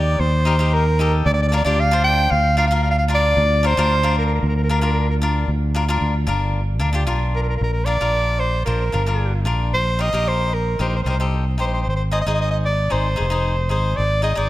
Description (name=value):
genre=calypso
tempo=113 BPM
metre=4/4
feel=straight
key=Bb major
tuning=A4 = 439 Hz
part: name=breathy soprano saxophone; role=melody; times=0.0-14.5 s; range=Bb4 to G5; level=-21 LUFS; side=right 1 dB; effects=none
part: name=cavaquinho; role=accompaniment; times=0.0-14.5 s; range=D4 to C5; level=-25 LUFS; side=left 3 dB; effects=none
part: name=fingered electric bass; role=bass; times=0.0-14.5 s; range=F1 to Eb2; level=-19 LUFS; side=equal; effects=none
room=light reverb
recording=none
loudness=-17 LUFS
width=side -15 dB against mid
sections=0.0-5.5 A section; 5.5-7.6 B section; 7.6-14.5 C section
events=none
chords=0.0 Eb; 1.3 Bb/D; 5.5 Bb; 9.7 Eb6/Bb; 11.9 Ab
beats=0.21 0.73 | 1.26 1.79 2.32 2.85 | 3.38 3.90 4.43 4.96 | 5.49 6.02 6.55 7.08 | 7.61 8.14 8.67 9.20 | 9.73 10.26 10.79 11.32 | 11.85 12.38 12.91 13.45 | 13.98